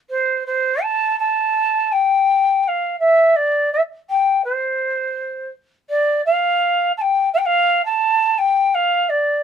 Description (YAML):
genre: andean folk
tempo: 83 BPM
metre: 4/4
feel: straight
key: unclear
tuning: A4 = 440 Hz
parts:
  - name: mellow quena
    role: solo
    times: 0.1-9.4 s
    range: C5 to A5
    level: -16 LUFS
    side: equal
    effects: none
room: little or no reverb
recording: close, detailed microphones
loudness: -16 LUFS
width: side -8 dB against mid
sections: 0.0-9.4 A section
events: none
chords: none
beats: | 0.10 0.82 1.55 2.27 | 2.99 3.71 4.43 5.15 | 5.87 6.59 7.31 8.02 | 8.74